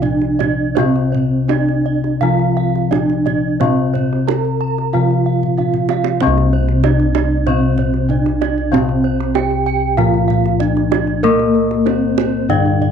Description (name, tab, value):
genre	Javanese gamelan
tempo	81-96 BPM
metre	4/4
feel	straight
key	C slendro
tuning	A4 = 440 Hz
part	gamelan-type bronze metallophone	melody	0.0-12.9 s	Bb3-40c to Bb4-40c	-19 LUFS	right 2 dB	none
part	gamelan-type bronze metallophone	accompaniment	0.0-12.9 s	C3 to Bb3-40c	-19 LUFS	left 10 dB	none
part	gamelan-type bronze metallophone	arpeggios	0.0-12.9 s	Bb4-40c to Bb5-40c	-23 LUFS	right 10 dB	none
part	gamelan-type bossed gongs	bass	0.0-12.9 s	C2 to Bb4-40c	-18 LUFS	equal	none
part	kendang	percussion	0.0-12.9 s	none	-24 LUFS	right 11 dB	none
room	moderate spring reverb, RT60 1.2 s, studio ambience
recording	1960s-style stereo with parts hard left and right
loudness	-13 LUFS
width	side -7 dB against mid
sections	0.0-6.2 A section; 6.2-12.9 B section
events	drum fill 5.4-6.2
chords	none